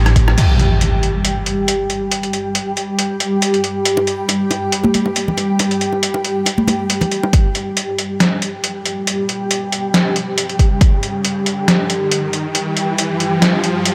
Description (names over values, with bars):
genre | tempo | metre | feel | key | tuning
deep dubstep | 138 BPM | 4/4 | swing 54% on 16ths, half-time | unclear | A4 = 440 Hz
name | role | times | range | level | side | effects
granular cloud pad | sustained chords | 0.0-13.9 s | G3 to G4 | -22 LUFS | equal | built-in reverb, vintage 12-bit sampler grit
trip hop sampler-style drum kit | drums | 0.1-13.9 s | crash cymbal, hi-hat, rim click, snare drum | -20 LUFS | equal | overdrive
bongos and congas | percussion | 0.1-0.4, 4.0-7.3 s | none | -22 LUFS | equal | dub echo
electronic kick drum | drums | 0.2-0.3, 7.3-7.4, 10.6-10.9 s | none | -14 LUFS | equal | overdrive
impact and riser | sound effects | 0.4-2.1, 9.2-13.9 s | none | -22 LUFS | equal | none
room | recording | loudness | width
moderate huge ambient reverb, RT60 4.2 s | none | -17 LUFS | mono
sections
0.4-7.3 A section; 7.3-13.9 B section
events
drum fill 0.0-0.4; band accent 0.3; impact 0.4-2.1; build-up 7.3-13.9; riser 9.2-13.9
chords
none